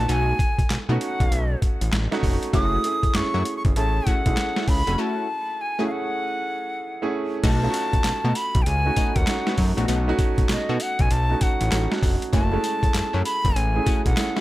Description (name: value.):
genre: R&B, new jack swing.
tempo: 98 BPM.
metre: 4/4.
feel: swing 63% on 16ths.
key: unclear.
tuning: A4 = 440 Hz.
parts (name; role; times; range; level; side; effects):
bright reedy bansuri; melody; 0.0-14.4 s; D#5 to D#6; -27 LUFS; left 1 dB; none.
warm grand piano; accompaniment; 0.0-14.4 s; G#3 to G#4; -29 LUFS; right 3 dB; none.
funky polysynth comp; stabs; 0.0-14.4 s; A3 to F#4; -29 LUFS; left 1 dB; chorus.
fat analog bass; bass; 0.0-14.1 s; E#1 to B2; -23 LUFS; equal; none.
boom bap sampler-style drum kit; drums; 0.1-14.4 s; crash cymbal, handclaps, hi-hat, kick drum, snare drum, tambourine; -23 LUFS; equal; none.
room: digital ambience.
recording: none.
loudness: -20 LUFS.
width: side -16 dB against mid.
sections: 0.0-7.4 A section; 7.4-14.4 B section.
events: break 5.0-7.4.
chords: 0.0 B7; 2.5 F#m7; 7.4 B7; 12.3 F#m7.